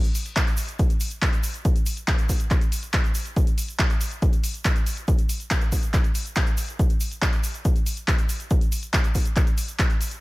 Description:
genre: trance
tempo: 140 BPM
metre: 4/4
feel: straight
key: none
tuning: none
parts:
  - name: big-room dance drum kit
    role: drums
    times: 0.0-10.2 s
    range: handclaps, hi-hat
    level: -28 LUFS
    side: equal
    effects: small room ambience
  - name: tube shaker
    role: percussion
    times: 0.0-10.2 s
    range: none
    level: -37 LUFS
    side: right 2 dB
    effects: none
  - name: electronic kick drum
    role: drums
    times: 0.4-9.9 s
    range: none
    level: -21 LUFS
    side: equal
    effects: small room ambience
room: little or no reverb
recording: none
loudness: -21 LUFS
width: side -20 dB against mid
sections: 0.0-10.2 A section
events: none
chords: none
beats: 0.36 0.79 1.22 | 1.65 2.08 2.51 2.94 | 3.36 3.79 4.22 4.65 | 5.08 5.51 5.93 6.36 | 6.79 7.22 7.65 8.08 | 8.51 8.94 9.36 9.79

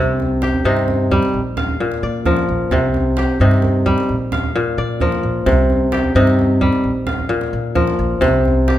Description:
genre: west african traditional, West African string and xylophone music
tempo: 87 BPM (dotted quarters)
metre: 12/8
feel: straight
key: C minor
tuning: A4 = 439 Hz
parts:
  - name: kora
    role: arpeggios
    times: 0.0-8.8 s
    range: Bb2 to F5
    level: -16 LUFS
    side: left 1 dB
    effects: none
  - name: upright bass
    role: bass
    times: 0.0-8.7 s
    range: Bb1 to Bb2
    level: -20 LUFS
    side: equal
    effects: none
  - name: djembe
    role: percussion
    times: 0.2-8.8 s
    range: none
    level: -23 LUFS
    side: right 3 dB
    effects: none
room: light reverb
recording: minimal, uncompressed stereo recording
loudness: -14 LUFS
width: side -12 dB against mid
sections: 0.0-8.8 A section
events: none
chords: 0.0 Cm; 1.3 Bb; 2.7 Cm; 4.1 Bb; 5.5 Cm; 6.8 Bb5; 8.2 C5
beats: 0.65 1.34 2.02 | 2.71 3.40 4.09 4.77 | 5.46 6.15 6.84 7.53 | 8.22

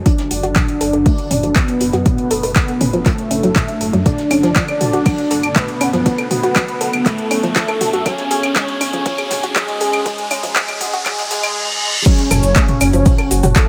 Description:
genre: melodic techno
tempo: 120 BPM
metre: 4/4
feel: straight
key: F# harmonic minor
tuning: A4 = 440 Hz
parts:
  - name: deep dark ambient pad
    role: sustained chords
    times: 0.0-13.7 s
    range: B3 to A5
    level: -31 LUFS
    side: equal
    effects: none
  - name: woody wave-folded pluck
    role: arpeggios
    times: 0.0-13.6 s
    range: E#3 to A4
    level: -24 LUFS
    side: equal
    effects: lush chorus, sidechain pumping, delay
  - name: swelling detuned saw bass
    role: bass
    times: 0.0-13.5 s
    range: F#1 to F#2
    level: -25 LUFS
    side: equal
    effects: sidechain pumping
  - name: riser and reverse cymbal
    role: sound effects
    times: 0.0-12.1 s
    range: none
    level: -28 LUFS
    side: equal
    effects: none
  - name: fat analog lead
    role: melody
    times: 0.1-13.7 s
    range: G#3 to D4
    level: -22 LUFS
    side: equal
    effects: ensemble chorus, cassette tape, sidechain pumping, delay
  - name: deep house drum kit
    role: drums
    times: 0.1-13.7 s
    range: claves, crash cymbal, handclaps, hi-hat, toms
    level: -22 LUFS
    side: equal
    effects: overdrive
  - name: electronic kick drum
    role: drums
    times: 0.1-13.7 s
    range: none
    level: -17 LUFS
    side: equal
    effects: overdrive
  - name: vintage brush drum kit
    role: drums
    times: 0.1-13.7 s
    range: hi-hat, snare drum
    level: -36 LUFS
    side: equal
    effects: none
  - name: cabasa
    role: percussion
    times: 12.1-13.7 s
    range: none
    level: -28 LUFS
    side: equal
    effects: none
room: light reverb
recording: high-pass filter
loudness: -16 LUFS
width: mono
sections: 0.0-12.1 A section; 12.1-13.7 B section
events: build-up 0.0-12.1; riser 0.0-12.1; filter sweep on synth pluck 0.0-12.1; filter sweep 0.0-12.1; reverse cymbal 11.1-12.1; drop 12.1-13.7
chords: 0.1 D/F#; 4.1 Bm7/F#; 8.1 C#sus4/F#; 12.1 F#m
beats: | 0.06 0.56 1.06 1.56 | 2.06 2.56 3.06 3.56 | 4.06 4.56 5.06 5.56 | 6.06 6.56 7.06 7.56 | 8.06 8.56 9.06 9.56 | 10.06 10.56 11.06 11.56 | 12.06 12.56 13.06 13.56

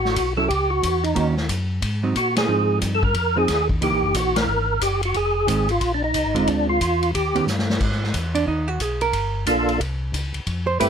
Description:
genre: soul jazz organ trio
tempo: 180 BPM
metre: 4/4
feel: swing 63% on 8ths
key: unclear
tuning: A4 = 440 Hz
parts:
  - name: percussive tonewheel organ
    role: melody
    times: 0.0-7.5, 9.5-10.9 s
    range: A3 to Bb4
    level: -21 LUFS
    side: right 1 dB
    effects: slow rotary speaker, overdrive, chorus vibrato
  - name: mellow tonewheel organ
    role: bass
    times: 0.0-10.9 s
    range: F1 to Bb2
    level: -25 LUFS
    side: left 1 dB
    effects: slow rotary speaker
  - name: vintage drum kit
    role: drums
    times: 0.1-10.9 s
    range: crash cymbal, hi-hat, kick drum, ride cymbal, snare drum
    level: -27 LUFS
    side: left 1 dB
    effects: none
  - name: hollow-body jazz guitar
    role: accompaniment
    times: 0.4-10.9 s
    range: D3 to C5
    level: -23 LUFS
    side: right 5 dB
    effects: none
room: light reverb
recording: none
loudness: -19 LUFS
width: side -7 dB against mid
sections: 0.0-7.8 A section; 7.8-10.9 B section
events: band accent 2.3, 4.3; drum fill 7.5-7.8; hollow-body jazz guitar solo 7.8-10.9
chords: 0.0 A6; 1.2 Ebm7; 1.8 Ab7; 2.5 Abmaj13; 3.8 F#13; 5.1 Fm7; 6.5 Dm7b5; 7.1 Ebaug7; 7.8 G#m; 9.1 Gm9; 9.8 N.C.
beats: 0.16 0.49 0.82 | 1.16 1.49 1.82 2.15 | 2.48 2.82 3.15 3.48 | 3.81 4.15 4.48 4.81 | 5.14 5.47 5.81 6.14 | 6.47 6.80 7.14 7.47 | 7.80 8.13 8.47 8.80 | 9.13 9.47 9.80 10.13 | 10.46 10.80

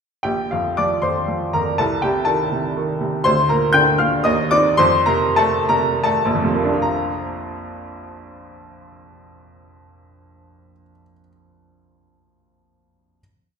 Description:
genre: classical, romantic character piece for solo piano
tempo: 71-128 BPM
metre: 3/4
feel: rubato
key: Bb major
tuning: A4 = 438 Hz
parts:
  - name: bright baby grand piano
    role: solo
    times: 0.2-13.2 s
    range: Bb1 to G6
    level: -16 LUFS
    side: equal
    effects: none
room: wet recital hall reverb, RT60 1.4 s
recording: recorded in a church or concert hall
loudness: -16 LUFS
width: side -6 dB against mid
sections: 0.2-6.8 A section; 6.8-11.0 final chord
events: slowing down 2.5-6.8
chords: 0.2 Bb; 1.8 Adim/C; 3.2 Bb/D; 4.3 Cm/Eb; 4.8 F; 6.8 Bb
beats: | 0.24 0.78 1.28 | 1.79 2.27 2.76 | 3.24 3.74 4.26 | 4.79 5.37 6.05 | 6.83 7.54 8.24 | 8.93 9.62 10.32

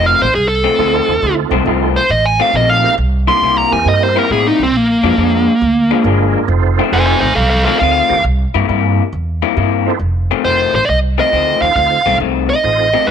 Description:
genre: blues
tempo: 137 BPM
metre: 4/4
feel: swing 67% on 8ths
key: F mixolydian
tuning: A4 = 437 Hz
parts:
  - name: dark smooth lead guitar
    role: melody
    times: 0.0-13.1 s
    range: Bb3 to C6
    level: -13 LUFS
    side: right 2 dB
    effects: overdrive
  - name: electric guitar through a small old amp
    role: riff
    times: 0.0-13.1 s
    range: F2 to E4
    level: -17 LUFS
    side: left 16 dB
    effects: lush chorus
  - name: upright bass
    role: bass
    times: 0.0-13.1 s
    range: F1 to A2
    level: -17 LUFS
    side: right 1 dB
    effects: none
  - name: tonewheel organ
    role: accompaniment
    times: 0.8-12.9 s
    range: A3 to D5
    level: -19 LUFS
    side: right 16 dB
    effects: overdrive, chorus vibrato, fast rotary speaker
room: light reverb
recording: 1960s-style stereo with parts hard left and right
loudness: -11 LUFS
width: side -8 dB against mid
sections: 0.0-10.0 A section; 10.0-13.1 B section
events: lead electric guitar solo 0.0-10.0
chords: 0.0 F7; 3.0 C7; 4.7 Bb7; 6.5 F7; 8.2 C7; 10.0 F7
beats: 0.35 0.79 | 1.23 1.67 2.11 2.54 | 2.98 3.42 3.86 4.30 | 4.74 5.18 5.62 6.05 | 6.49 6.93 7.37 7.81 | 8.24 8.68 9.12 9.56 | 10.00 10.44 10.88 11.32 | 11.76 12.20 12.64 13.07

